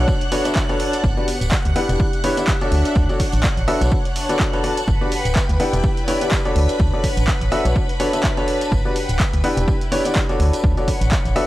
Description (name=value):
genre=piano house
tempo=125 BPM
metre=4/4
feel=swing 56% on 16ths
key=unclear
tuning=A4 = 440 Hz
part: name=string machine, violins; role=sustained chords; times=0.0-11.5 s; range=B4 to F#6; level=-29 LUFS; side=equal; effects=ensemble chorus, sidechain pumping
part: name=clear grand piano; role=riff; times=0.0-11.5 s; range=D4 to F#5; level=-22 LUFS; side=left 1 dB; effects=sidechain pumping, analog delay
part: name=organ-like FM bass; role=bass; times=0.0-11.3 s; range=D1 to D2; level=-19 LUFS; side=equal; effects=sidechain pumping
part: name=warm studio string section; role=texture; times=0.0-11.5 s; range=B3 to A5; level=-28 LUFS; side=left 1 dB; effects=sidechain pumping
part: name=electronic kick drum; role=drums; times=0.1-11.2 s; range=none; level=-21 LUFS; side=equal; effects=overdrive
part: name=tambourine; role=percussion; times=0.1-11.3 s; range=none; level=-39 LUFS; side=right 3 dB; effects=none
part: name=punchy analog drum machine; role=drums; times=0.2-11.5 s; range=handclaps, hi-hat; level=-26 LUFS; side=equal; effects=overdrive
room=little or no reverb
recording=dry, gritty hardware recording, cassette tape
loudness=-16 LUFS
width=side -16 dB against mid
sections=0.0-11.5 A section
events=none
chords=0.0 Bm9; 1.0 Gmaj7; 1.8 Em7; 2.7 Dmaj7; 3.7 Bm9; 4.9 Gmaj7; 5.6 Em7; 6.6 Dmaj7; 7.5 Bm9; 8.7 Gmaj7; 9.4 Em7; 10.4 Bm9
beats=0.08 0.56 | 1.04 1.52 2.00 2.48 | 2.96 3.44 3.92 4.40 | 4.88 5.36 5.84 6.32 | 6.80 7.28 7.76 8.24 | 8.72 9.20 9.68 10.16 | 10.64 11.12